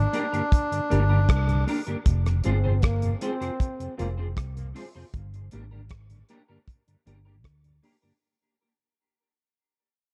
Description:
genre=dub reggae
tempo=78 BPM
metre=4/4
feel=straight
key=unclear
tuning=A4 = 441 Hz
part: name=melodica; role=melody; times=0.0-1.6 s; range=D4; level=-32 LUFS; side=equal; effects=dub echo
part: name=mellow tonewheel organ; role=accompaniment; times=0.0-8.1 s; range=F2 to G4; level=-36 LUFS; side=equal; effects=slow rotary speaker
part: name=vintage muted fingered electric bass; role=bass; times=0.0-7.8 s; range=F1 to D2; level=-27 LUFS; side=equal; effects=none
part: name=semi-hollow electric guitar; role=accompaniment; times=0.1-8.1 s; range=Bb3 to C5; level=-37 LUFS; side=equal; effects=ensemble chorus, dub echo
part: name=damped 70s drum kit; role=drums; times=0.1-8.0 s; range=hi-hat, kick drum, rim click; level=-27 LUFS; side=equal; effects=none
part: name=breathy trombone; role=second line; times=2.4-4.1 s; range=Bb3 to C4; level=-37 LUFS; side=equal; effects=dub echo
room=small room ambience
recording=dark, warm production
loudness=-25 LUFS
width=mono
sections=0.0-8.2 A section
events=fade-out 0.0-8.2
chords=0.0 Gm; 2.1 Fm; 5.1 Gm

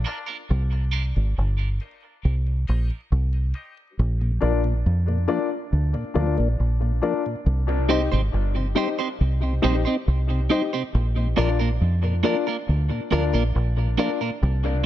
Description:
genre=reggae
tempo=69 BPM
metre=4/4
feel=straight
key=unclear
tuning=A4 = 438 Hz
part: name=clean electric guitar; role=accompaniment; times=0.0-1.0, 7.9-14.9 s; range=Bb3 to C5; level=-28 LUFS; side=right 8 dB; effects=high-pass filter, tape echo
part: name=deep dub fingered electric bass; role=bass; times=0.0-14.9 s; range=G1 to F2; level=-21 LUFS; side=equal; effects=none
part: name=mellow tonewheel organ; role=accompaniment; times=0.1-14.7 s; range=Bb2 to Eb4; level=-31 LUFS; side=left 2 dB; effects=slow rotary speaker, high-pass filter
part: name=dark upright piano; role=stabs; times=0.1-14.2 s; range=D4 to Eb5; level=-27 LUFS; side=left 6 dB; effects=high-pass filter, tape echo
room=light reverb, digital ambience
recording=echo-heavy mix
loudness=-21 LUFS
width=side -13 dB against mid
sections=0.0-14.9 A section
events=none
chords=0.0 Bb; 0.5 Cm; 4.0 Bb; 7.5 Cm; 10.9 Bb

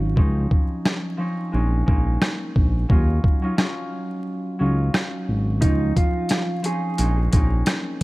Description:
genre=hip hop, boom-bap hip-hop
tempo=88 BPM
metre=4/4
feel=swing 56% on 16ths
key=Eb dorian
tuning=A4 = 441 Hz
part: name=mellow electric guitar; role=melody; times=0.0-0.1, 5.6-7.2 s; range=Eb4 to Ab4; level=-29 LUFS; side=right 3 dB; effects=spring reverb, high-pass filter, low-pass filter, tape echo
part: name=concert harp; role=accompaniment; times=0.0-8.0 s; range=F3 to F4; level=-26 LUFS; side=equal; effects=cassette tape, high-pass filter, low-pass filter
part: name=smooth gliding synth bass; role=bass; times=0.0-7.6 s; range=Ab1 to Eb2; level=-20 LUFS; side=equal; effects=none
part: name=boom bap sampler-style drum kit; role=drums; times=0.2-8.0 s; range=hi-hat, kick drum, rim click, snare drum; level=-20 LUFS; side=equal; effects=none
room=little or no reverb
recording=vinyl crackle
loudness=-19 LUFS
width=side -20 dB against mid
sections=0.0-8.0 A section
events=break 0.0-5.6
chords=0.2 Dbmaj9; 1.5 Bbm11; 2.9 Ebm9; 5.6 Dbmaj9; 7.0 Bbm11

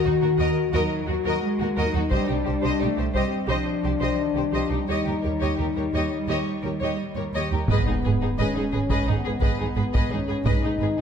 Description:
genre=cinematic, epic orchestral film score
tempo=87 BPM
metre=4/4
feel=straight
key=G# minor from 7.7 s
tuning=A4 = 439 Hz
part: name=clear symphonic violin section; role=melody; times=0.0-11.0 s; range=Gb4 to Eb5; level=-33 LUFS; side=left 2 dB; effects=none
part: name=rich symphonic violin section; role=second line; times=0.0-11.0 s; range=Eb4 to Db5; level=-31 LUFS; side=left 3 dB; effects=none
part: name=warm symphonic viola section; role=accompaniment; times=0.0-10.9 s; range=Gb4 to G#4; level=-33 LUFS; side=right 1 dB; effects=none
part: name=mellow French horn section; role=sustained chords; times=0.0-11.0 s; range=B3 to Gb4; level=-27 LUFS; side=left 7 dB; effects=none
part: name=rich studio double bass section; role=bass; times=0.0-10.9 s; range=G#1 to Eb2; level=-28 LUFS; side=right 4 dB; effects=none
part: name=warm symphonic cello section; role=bass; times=0.0-10.9 s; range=G#2 to A3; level=-29 LUFS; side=right 4 dB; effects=none
part: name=taiko ensemble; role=drums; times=2.1-3.5, 7.7-11.0 s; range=none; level=-26 LUFS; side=right 1 dB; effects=none
part: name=impact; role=sound effects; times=7.7-10.5 s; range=none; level=-32 LUFS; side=equal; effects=none
room=moderate scoring stage reverb, RT60 1.5 s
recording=none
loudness=-22 LUFS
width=side -7 dB against mid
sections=0.0-7.7 A section; 7.7-11.0 B section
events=impact 7.7-10.5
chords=0.0 Ebm; 2.1 Cm; 4.9 Eb7; 7.7 G#m

